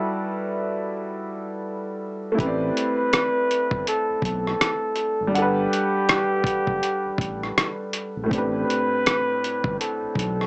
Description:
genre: lo-fi hip hop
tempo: 81 BPM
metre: 4/4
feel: swing 61% on 16ths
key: unclear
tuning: A4 = 438 Hz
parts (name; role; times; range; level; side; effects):
- warm upright piano; accompaniment; 0.0-10.5 s; A2 to F#5; -26 LUFS; equal; cassette tape, low-pass filter
- breathy flugelhorn; melody; 2.4-10.5 s; G4 to B4; -24 LUFS; equal; low-pass filter
- smooth gliding synth bass; bass; 2.4-10.5 s; F#1 to B1; -30 LUFS; equal; none
- dusty soul sampler-style drum kit; drums; 2.4-10.5 s; hi-hat, kick drum, rim click; -23 LUFS; equal; overdrive
room: moderate studio reverb, RT60 0.5 s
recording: cassette tape, small speaker sound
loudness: -21 LUFS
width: side -30 dB against mid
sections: 0.0-2.4 A section; 2.4-10.5 B section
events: none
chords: 0.0 Em11/G; 2.4 Am11; 5.3 Gmaj9; 8.3 Am11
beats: 0.16 0.90 1.64 | 2.38 3.12 3.86 4.61 | 5.35 6.09 6.83 7.57 | 8.31 9.05 9.79

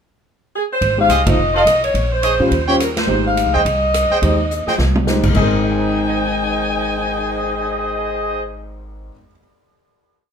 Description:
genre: jazz, big band swing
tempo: 212 BPM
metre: 4/4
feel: swing 60% on 8ths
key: Ab major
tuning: A4 = 440 Hz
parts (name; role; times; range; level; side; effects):
- warm saxophone section; melody; 0.6-8.4 s; Eb4 to Ab5; -19 LUFS; left 1 dB; none
- upright bass; bass; 0.8-9.1 s; F1 to Bb2; -22 LUFS; equal; none
- swinging big-band drum kit; drums; 0.8-7.6 s; crash cymbal, cymbal swell, hi-hat, kick drum, ride cymbal, rim click, snare drum, toms; -22 LUFS; right 1 dB; none
- warm grand piano; accompaniment; 1.0-9.4 s; Ab2 to Eb7; -21 LUFS; left 1 dB; none
- clear trumpet section; stabs; 1.1-8.4 s; F4 to G5; -21 LUFS; right 1 dB; none
room: moderate large studio reverb, RT60 0.9 s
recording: minimal, uncompressed stereo recording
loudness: -14 LUFS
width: side -7 dB against mid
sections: 0.0-0.8 pickup bar; 0.8-5.4 A section; 5.4-7.6 final chord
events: band accent 1.2, 2.9; drum fill 4.5-5.1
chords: 0.0 N.C.; 0.8 Abmaj7; 1.4 F7; 1.9 Bbm11; 2.5 Eb13; 3.1 Abmaj7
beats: 0.25 0.53 | 0.81 1.10 1.38 1.67 | 1.95 2.23 2.52 2.80 | 3.08 3.37 3.65 3.93 | 4.21 4.50 4.78 5.07 | 5.35 5.63 5.92 6.20 | 6.49 6.77 7.06 7.34

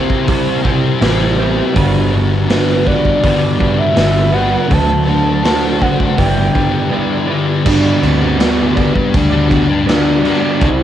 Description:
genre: rock, shoegaze and dream pop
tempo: 81 BPM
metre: 4/4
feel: straight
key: G major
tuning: A4 = 441 Hz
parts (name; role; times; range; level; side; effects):
- electric guitar through a small old amp; riff; 0.0-10.8 s; C3 to D5; -18 LUFS; right 10 dB; reverse reverb, cassette tape
- thick fuzz guitar; riff; 0.0-10.8 s; G2 to D4; -16 LUFS; left 6 dB; distortion, ensemble chorus, cassette tape
- raw garage drum kit; drums; 0.1-10.8 s; crash cymbal, hi-hat, kick drum, snare drum; -18 LUFS; equal; cassette tape
- vintage muted fingered electric bass; bass; 0.7-10.8 s; G1 to C3; -18 LUFS; equal; none
- mellow horn-like synth lead; melody; 2.5-10.8 s; B3 to A5; -18 LUFS; equal; chorus, tape echo
room: light reverb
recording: home recording on cassette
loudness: -11 LUFS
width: side -11 dB against mid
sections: 0.0-7.7 A section; 7.7-10.8 B section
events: break 6.9-7.7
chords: 0.0 Cmaj7; 1.8 Gmaj7; 4.7 D7; 6.2 G6; 7.7 Gmaj7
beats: 0.28 1.02 | 1.75 2.49 3.23 3.96 | 4.70 5.44 6.18 6.92 | 7.65 8.39 9.13 9.87 | 10.61

